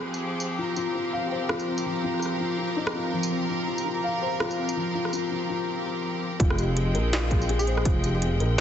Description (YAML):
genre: half-time drum and bass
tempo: 165 BPM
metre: 4/4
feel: swing 56% on 16ths, half-time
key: F minor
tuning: A4 = 437 Hz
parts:
  - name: clear studio string section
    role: sustained chords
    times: 0.0-8.6 s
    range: F3 to G5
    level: -30 LUFS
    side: right 1 dB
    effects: sidechain pumping
  - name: industrial drum kit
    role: drums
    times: 0.1-8.6 s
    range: hi-hat, rim click, snare drum, tambourine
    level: -30 LUFS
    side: right 1 dB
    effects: none
  - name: felt-muted upright piano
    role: arpeggios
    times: 0.6-8.6 s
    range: F3 to F5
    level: -29 LUFS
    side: left 3 dB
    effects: vintage 12-bit sampler grit, tape echo
  - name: dark detuned saw bass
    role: bass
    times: 6.4-8.6 s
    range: F1 to Bb1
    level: -24 LUFS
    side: equal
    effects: none
  - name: electronic kick drum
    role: drums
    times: 6.4-7.9 s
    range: none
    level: -24 LUFS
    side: equal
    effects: none
  - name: plucky unison lead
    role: melody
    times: 7.6-7.9 s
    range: Ab4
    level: -33 LUFS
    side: equal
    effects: ping-pong delay
room: moderate lush hall reverb, RT60 1.8 s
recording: heavily compressed radio sound, multiband compression, nothing above 7.9 kHz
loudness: -24 LUFS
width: side -9 dB against mid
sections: 0.0-6.4 A section; 6.4-8.6 B section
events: break 5.7-6.4; drop 6.4-8.6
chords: 0.0 F5; 6.4 Fm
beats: 0.22 | 0.58 0.94 1.31 1.67 | 2.04 2.40 2.76 3.13 | 3.49 3.85 4.22 4.58 | 4.95 5.31 5.67 6.04 | 6.40 6.76 7.13 7.49 | 7.86 8.22 8.58